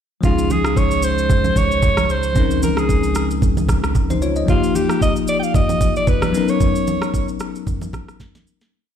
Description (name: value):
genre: amapiano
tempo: 113 BPM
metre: 4/4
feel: swing 55% on 16ths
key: Db major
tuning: A4 = 440 Hz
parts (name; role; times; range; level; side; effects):
- breathy alto saxophone; melody; 0.2-7.3 s; F4 to G5; -21 LUFS; right 2 dB; ping-pong delay
- bell-like tine electric piano; accompaniment; 0.2-8.8 s; F3 to Eb5; -21 LUFS; left 6 dB; none
- warm sub bass; bass; 0.2-4.4 s; Db2; -21 LUFS; right 1 dB; none
- smooth R&B drum kit; drums; 0.2-8.7 s; kick drum, rim click, shaker, snare drum; -20 LUFS; equal; none
- congas; percussion; 0.2-8.5 s; none; -25 LUFS; right 6 dB; none
room: digital ambience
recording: played on a big sound system in a bare room, large studio reverb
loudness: -15 LUFS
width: side -8 dB against mid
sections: 0.2-8.7 groove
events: fade-out 6.6-8.7; drum fill 8.2-8.7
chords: 0.2 Dbmaj9; 4.5 Ebadd9; 6.3 Cbmaj9